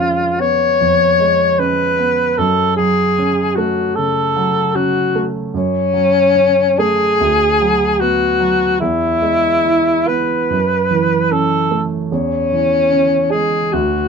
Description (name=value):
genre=classical, romantic duo for alto saxophone and grand piano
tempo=74 BPM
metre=4/4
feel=uneven beats, rubato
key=F# minor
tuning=A4 = 440 Hz
part: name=clear alto saxophone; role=melody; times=0.0-14.1 s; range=C#4 to C#5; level=-14 LUFS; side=left 2 dB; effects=none
part: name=warm grand piano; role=accompaniment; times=0.0-14.1 s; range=D2 to E4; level=-19 LUFS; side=right 5 dB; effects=none
room=light reverb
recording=close, detailed microphones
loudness=-13 LUFS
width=side -6 dB against mid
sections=0.0-14.1 A section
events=none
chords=0.0 C#7/E#; 2.4 F#m; 7.2 Bm/D; 8.8 E; 10.5 F#m7; 12.1 C#m/E